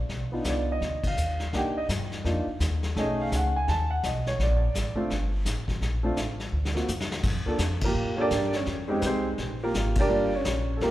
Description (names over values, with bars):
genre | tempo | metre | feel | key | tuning
jazz piano trio | 168 BPM | 4/4 | swing 63% on 8ths | Bb major | A4 = 439 Hz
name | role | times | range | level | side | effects
upright bass | bass | 0.0-10.9 s | G1 to A2 | -29 LUFS | equal | none
vintage brush drum kit | drums | 0.1-10.9 s | brushed snare drum, crash cymbal, hi-hat, kick drum, ride cymbal, snare drum, toms | -32 LUFS | left 1 dB | none
warm grand piano | melody | 0.3-10.9 s | G3 to A5 | -28 LUFS | right 1 dB | none
room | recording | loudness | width
moderate concert hall reverb, RT60 2.2 s | recorded in a church or concert hall | -25 LUFS | side -14 dB against mid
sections
0.0-7.2 A section; 7.2-10.9 B section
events
band accent 1.0, 7.8, 9.9; drum fill 6.5-7.2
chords
0.1 Bdim; 1.5 Cm9; 3.0 B13; 4.4 Bbmaj7; 6.5 D; 7.2 Gm7; 8.7 Fm9; 9.4 Bb6; 10.1 Ebmaj9 (rootless)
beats
| 0.11 0.47 0.82 1.18 | 1.54 1.90 2.25 2.61 | 2.96 3.32 3.68 4.04 | 4.39 4.75 5.11 5.46 | 5.82 6.18 6.54 6.89 | 7.25 7.61 7.96 8.32 | 8.68 9.03 9.39 9.75 | 10.10 10.46 10.81